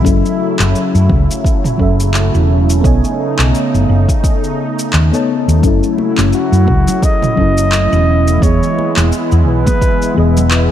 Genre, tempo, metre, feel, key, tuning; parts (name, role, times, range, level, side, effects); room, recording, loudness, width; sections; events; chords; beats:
sunset chillout; 86 BPM; 4/4; swing 57% on 16ths; F# dorian; A4 = 442 Hz
mellow FM electric piano; accompaniment; 0.0-10.7 s; E3 to A5; -17 LUFS; moving between left 7 dB and right 7 dB; chorus, auto-pan, digital delay
lush unison pad; sustained chords; 0.0-10.7 s; C#3 to E4; -19 LUFS; equal; chorus, phaser, vintage 12-bit sampler grit
hollow-body short-scale fingered electric bass; bass; 0.0-10.7 s; E1 to F#2; -12 LUFS; equal
electronic kick drum; drums; 0.0-10.0 s; -15 LUFS; equal; overdrive
deep house drum kit; drums; 0.1-10.7 s; handclaps, shaker, toms; -20 LUFS; equal; overdrive
congas; percussion; 6.0-10.5 s; -23 LUFS; right 4 dB
mellow flugelhorn; melody; 6.3-10.5 s; F#4 to D#5; -18 LUFS; equal; tape echo
light reverb; dark, warm production; -10 LUFS; side -11 dB against mid
0.0-10.7 A section
0.0 F#m7; 2.8 B13; 5.6 F#m7; 8.4 Emaj7
| 0.05 0.75 1.44 2.14 | 2.84 3.54 4.23 4.93 | 5.63 6.33 7.03 7.72 | 8.42 9.12 9.82 10.51